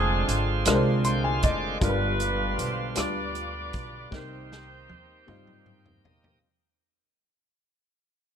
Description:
slow gospel; 52 BPM (dotted quarters); 6/8; straight; C minor; A4 = 439 Hz
warm horn section; melody; 0.0-6.1 s; C4 to D5; -32 LUFS; right 1 dB
warm upright piano; accompaniment; 0.0-6.5 s; G2 to C6; -28 LUFS; left 2 dB
bright tonewheel organ; sustained chords; 0.0-6.4 s; B2 to G5; -32 LUFS; right 3 dB; slow rotary speaker
upright bass; bass; 0.0-6.4 s; F1 to G2; -30 LUFS; right 1 dB
warm soul drum kit; drums; 0.3-6.4 s; hi-hat, kick drum, rim click, snare drum, toms; -28 LUFS; right 1 dB
little or no reverb; -23 LUFS; side -8 dB against mid
0.0-6.4 A section
fade-out 0.0-6.4; upright piano fill 0.7-1.8; tonewheel organ fill 0.7-1.8, 5.3-6.4; drum fill 4.1-6.4
0.0 Dm7b5/F; 1.8 G7; 4.1 Cm7

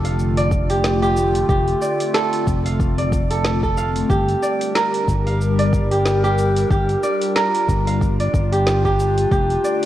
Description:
organic downtempo; 92 BPM; 4/4; swing 57% on 16ths; G minor; A4 = 440 Hz
warbly tape-like pad; sustained chords; 0.0-9.9 s; D3 to Bb4; -25 LUFS; left 2 dB; chorus, built-in reverb, phaser, sidechain pumping
kora; arpeggios; 0.0-9.9 s; G4 to F5; -20 LUFS; right 1 dB; tape echo
fretless electric bass; bass; 0.0-9.6 s; F1 to G1; -20 LUFS; equal; tube saturation, wide subtle chorus
afro-pop drum kit; drums; 0.0-9.9 s; hi-hat, shaker, snare drum; -28 LUFS; equal; overdrive
electronic kick drum; drums; 0.5-9.5 s; -22 LUFS; equal; overdrive
moderate lush hall reverb, RT60 2.6 s; worn, warbling old tape, cassette tape, warbly pitch drift; -16 LUFS; side -13 dB against mid
0.0-9.9 A section
0.0 Dm/F; 4.1 Gm; 9.3 Dm/F

